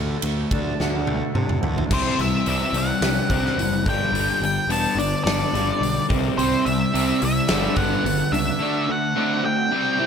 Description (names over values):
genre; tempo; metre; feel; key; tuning
quiet-loud alternative rock; 107 BPM; 4/4; straight; G major; A4 = 440 Hz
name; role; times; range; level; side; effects
electric guitar through a small old amp; arpeggios; 0.0-10.1 s; C3 to A4; -28 LUFS; right 2 dB; analog chorus, slapback echo
fuzz picked electric bass; bass; 0.0-8.5 s; E1 to C3; -26 LUFS; equal; overdrive
big rock drum kit; drums; 0.2-8.5 s; crash cymbal, hi-hat, kick drum, ride cymbal, snare drum, toms; -26 LUFS; equal; none
octave-fuzz lead guitar; melody; 1.9-10.1 s; C5 to A5; -24 LUFS; equal; distortion
distorted electric guitar; riff; 1.9-10.1 s; G2 to D4; -26 LUFS; left 10 dB; distortion
distorted electric guitar; riff; 6.4-10.1 s; G2 to D4; -25 LUFS; right 10 dB; distortion, slapback echo
room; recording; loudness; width
moderate lush hall reverb, RT60 1.9 s, small room ambience; big arena sound; -19 LUFS; side -7 dB against mid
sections
0.0-1.9 A section; 1.9-10.1 B section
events
drum fill 0.8-1.9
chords
0.0 D; 1.9 C; 3.9 Gadd9; 6.1 C; 7.5 G; 8.6 D7